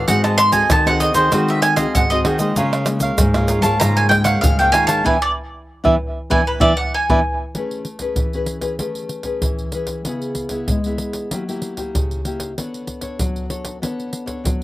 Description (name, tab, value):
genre	samba and choro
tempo	96 BPM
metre	4/4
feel	straight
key	unclear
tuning	A4 = 437 Hz
part	bowl-back mandolin	melody	0.0-7.4 s	B4 to B#5	-17 LUFS	right 1 dB	none
part	cavaquinho	accompaniment	0.0-7.2 s	E#4 to E#5	-22 LUFS	right 2 dB	slapback echo
part	nylon-string guitar	accompaniment	0.0-14.6 s	G#2 to C#5	-24 LUFS	left 2 dB	none
part	nylon-string guitar	bass	0.0-7.2 s	G#2 to E3	-21 LUFS	equal	none
part	egg shaker, surdo, pandeiro and tamborim	percussion	0.1-14.6 s	none	-21 LUFS	equal	none
room	little or no reverb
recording	recorded outdoors, with no room sound, faint mains hum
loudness	-16 LUFS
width	side -16 dB against mid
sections	0.0-7.6 A section; 7.6-14.6 B section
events	mandolin solo 0.0-7.6; band accent 5.1-7.6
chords	0.1 G#7b9; 2.6 C#6; 5.1 E5; 7.6 Amaj9; 10.1 C#m7; 11.3 F#7b9; 12.6 Bm9